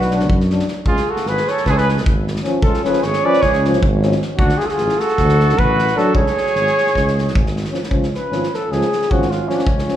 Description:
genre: balkan folk, Balkan brass band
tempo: 307 BPM (eighths)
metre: 9/8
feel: straight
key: C# phrygian dominant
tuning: A4 = 440 Hz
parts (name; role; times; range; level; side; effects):
- mellow cornet; melody; 0.0-10.0 s; C#4 to D5; -19 LUFS; equal; none
- warm trumpet; second line; 0.0-7.5 s; D4 to B4; -23 LUFS; right 3 dB; none
- mellow tuba; bass; 0.0-9.9 s; G#1 to F#2; -20 LUFS; equal; none
- loose indie drum kit; percussion; 0.0-9.9 s; kick drum, snare drum; -21 LUFS; equal; none
- clear euphonium; accompaniment; 0.1-10.0 s; C#4 to D4; -22 LUFS; left 5 dB; none
- mellow trombone; accompaniment; 0.1-10.0 s; E#3 to F#3; -25 LUFS; right 4 dB; none
room: wet recital hall reverb, RT60 1.4 s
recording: recorded in a church or concert hall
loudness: -14 LUFS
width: side -11 dB against mid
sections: 0.0-7.9 A section; 7.9-10.0 B section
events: cornet solo 7.9-10.0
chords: 0.0 Bm; 0.9 C#; 4.4 D; 6.1 C#5; 7.9 C#

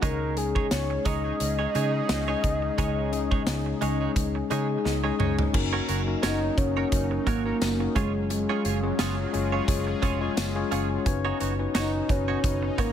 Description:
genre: 1980s-style pop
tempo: 87 BPM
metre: 4/4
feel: swing 55% on 16ths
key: unclear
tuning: A4 = 440 Hz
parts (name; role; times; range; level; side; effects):
- mellow horn-like synth lead; melody; 0.0-12.9 s; G#3 to D#5; -30 LUFS; right 1 dB; chorus, digital delay
- tine electric piano; accompaniment; 0.0-12.9 s; C#3 to C#5; -30 LUFS; left 7 dB; none
- sweeping resonant pad; sustained chords; 0.0-12.9 s; B2 to G#4; -36 LUFS; right 1 dB; chorus
- direct-recorded clean electric guitar; riff; 0.0-12.9 s; G#3 to C#5; -33 LUFS; right 9 dB; lush chorus, digital delay
- vintage muted fingered electric bass; bass; 0.0-12.9 s; E#1 to C#3; -30 LUFS; right 1 dB; none
- big rock drum kit; drums; 0.0-12.9 s; crash cymbal, hi-hat, kick drum, snare drum, tambourine, toms; -29 LUFS; equal; none
room: light reverb, studio reverb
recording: none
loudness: -24 LUFS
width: side -9 dB against mid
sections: 0.0-5.5 A section; 5.5-12.9 B section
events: drum fill 4.9-5.5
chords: 0.0 C#sus2; 5.5 D#m7/F#; 8.0 C#/F#; 11.1 Badd9/F#

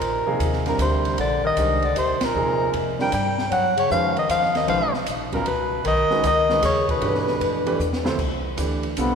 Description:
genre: modal jazz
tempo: 154 BPM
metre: 3/4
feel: swing 66% on 8ths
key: unclear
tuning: A4 = 441 Hz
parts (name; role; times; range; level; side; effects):
- breathy soprano saxophone; melody; 0.0-7.8 s; A#4 to G5; -22 LUFS; left 1 dB; none
- clear bass clarinet; second line; 0.0-9.2 s; Bb2 to B3; -27 LUFS; left 2 dB; none
- upright bass; bass; 0.0-9.2 s; Bb1 to G2; -28 LUFS; equal; none
- open jazz drum kit; drums; 0.0-9.1 s; crash cymbal, hi-hat, kick drum, ride cymbal, snare drum; -32 LUFS; right 1 dB; none
- warm concert grand piano; accompaniment; 0.3-9.2 s; D2 to C5; -27 LUFS; right 2 dB; none
room: wet church reverb, RT60 2.8 s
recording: recorded in a church or concert hall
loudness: -19 LUFS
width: side -6 dB against mid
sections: 0.0-8.2 A section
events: band accent 2.1; drum fill 7.8-8.2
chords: 0.0 Ebmaj9; 3.5 Bmaj9; 7.0 G13; 8.2 Cmaj9

